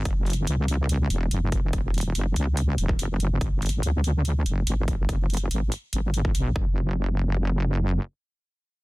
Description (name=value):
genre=heavy wobble dubstep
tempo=143 BPM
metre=4/4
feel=half-time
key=unclear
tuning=A4 = 439 Hz
part: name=wobble bass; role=bass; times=0.0-8.0 s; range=E1 to D2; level=-24 LUFS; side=equal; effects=chorus, overdrive
part: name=electronic hi-hat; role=drums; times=0.1-6.4 s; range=none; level=-34 LUFS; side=right 1 dB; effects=overdrive
part: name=electronic kick drum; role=drums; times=0.1-6.6 s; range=none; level=-26 LUFS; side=equal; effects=overdrive
room=little or no reverb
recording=dense, heavily limited modern master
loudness=-23 LUFS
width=side -21 dB against mid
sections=0.0-6.8 A section; 6.8-8.8 B section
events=filter sweep on wobble bass 0.0-6.8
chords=none